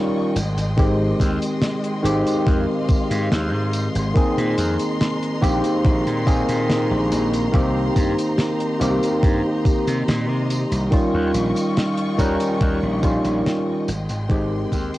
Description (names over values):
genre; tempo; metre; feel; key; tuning
vaporwave; 71 BPM; 4/4; straight; unclear; A4 = 439 Hz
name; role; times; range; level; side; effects
barky tine electric piano; accompaniment; 0.0-15.0 s; Eb3 to Ab4; -21 LUFS; equal; overdrive, wide subtle chorus, tape echo
warm studio string section; sustained chords; 0.0-15.0 s; Ab3 to Db6; -30 LUFS; left 1 dB; none
gritty slap bass; bass; 0.4-14.9 s; Ab1 to C3; -24 LUFS; equal; overdrive
damped 70s drum kit; drums; 0.4-15.0 s; hi-hat, snare drum, tambourine; -27 LUFS; equal; vintage 12-bit sampler grit, cassette tape
electronic kick drum; drums; 0.8-14.9 s; none; -19 LUFS; equal; vintage 12-bit sampler grit, cassette tape
room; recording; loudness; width
small room reverb; home recording on cassette; -18 LUFS; side -16 dB against mid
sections
0.0-15.0 A section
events
fade-out 12.0-15.0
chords
0.4 Abmaj7; 4.2 Bb9sus4; 7.5 Cm7; 10.9 Eb9; 13.9 Abmaj7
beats
| 0.78 1.62 2.47 3.32 | 4.16 5.01 5.85 6.70 | 7.54 8.39 9.23 10.08 | 10.92 11.77 12.61 13.46 | 14.30